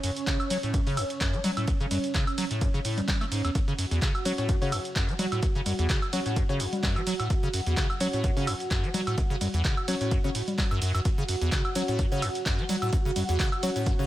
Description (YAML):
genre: acid house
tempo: 128 BPM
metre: 4/4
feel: swing 55% on 16ths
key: F# minor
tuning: A4 = 440 Hz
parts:
  - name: dark analog pad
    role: sustained chords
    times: 0.0-14.1 s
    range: C#4 to F#5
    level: -34 LUFS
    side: right 2 dB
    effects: chorus, sidechain pumping
  - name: liquid acid bass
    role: riff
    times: 0.0-14.1 s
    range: E2 to A3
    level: -30 LUFS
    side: equal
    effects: tube saturation, lush chorus
  - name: punchy analog drum machine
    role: drums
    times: 0.0-14.1 s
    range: congas, handclaps, hi-hat, ride cymbal, shaker, woodblock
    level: -32 LUFS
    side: equal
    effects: none
  - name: electronic kick drum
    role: drums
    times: 0.3-14.0 s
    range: none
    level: -28 LUFS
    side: equal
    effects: none
  - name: deep mellow chord stab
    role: stabs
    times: 4.3-14.0 s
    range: C#4 to C#5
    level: -34 LUFS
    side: left 3 dB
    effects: chorus, dub echo
room: light reverb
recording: none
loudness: -25 LUFS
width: side -14 dB against mid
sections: 0.0-14.1 A section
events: none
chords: 0.0 F#5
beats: 0.27 0.74 1.21 | 1.68 2.15 2.61 3.08 | 3.55 4.02 4.49 4.96 | 5.43 5.89 6.36 6.83 | 7.30 7.77 8.24 8.71 | 9.18 9.64 10.11 10.58 | 11.05 11.52 11.99 12.46 | 12.93 13.39 13.86